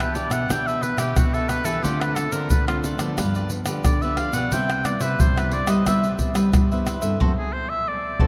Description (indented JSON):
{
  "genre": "samba and choro",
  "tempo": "90 BPM",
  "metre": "4/4",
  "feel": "straight",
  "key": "unclear",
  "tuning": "A4 = 440 Hz",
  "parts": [
    { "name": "clear oboe", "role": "melody", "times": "0.0-8.3 s", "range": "F4 to G5", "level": "-29 LUFS", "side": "equal", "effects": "none" },
    { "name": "cavaquinho", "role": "accompaniment", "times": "0.0-8.3 s", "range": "D4 to E5", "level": "-33 LUFS", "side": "equal", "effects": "none" },
    { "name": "nylon-string guitar", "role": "accompaniment", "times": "0.0-8.3 s", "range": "G2 to A4", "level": "-32 LUFS", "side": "equal", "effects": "none" },
    { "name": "nylon-string guitar", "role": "bass", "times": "0.0-8.3 s", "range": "F#2 to G3", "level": "-28 LUFS", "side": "equal", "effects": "none" },
    { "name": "egg shaker, pandeiro, tamborim and surdo", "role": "percussion", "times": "0.0-8.3 s", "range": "none", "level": "-26 LUFS", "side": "equal", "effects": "none" }
  ],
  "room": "wet cathedral reverb, RT60 5.4 s",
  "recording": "in a vast, echoing space",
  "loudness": "-22 LUFS",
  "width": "mono",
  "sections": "0.0-8.3 A section",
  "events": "oboe solo 0.0-8.3; band accent 7.2-8.3",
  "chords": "0.0 Em7; 1.8 Dm7; 3.2 G7; 4.5 Cmaj7; 7.2 F#dim",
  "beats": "0.50 1.17 | 1.84 2.52 3.19 3.85 | 4.53 5.20 5.87 6.53 | 7.20 7.87"
}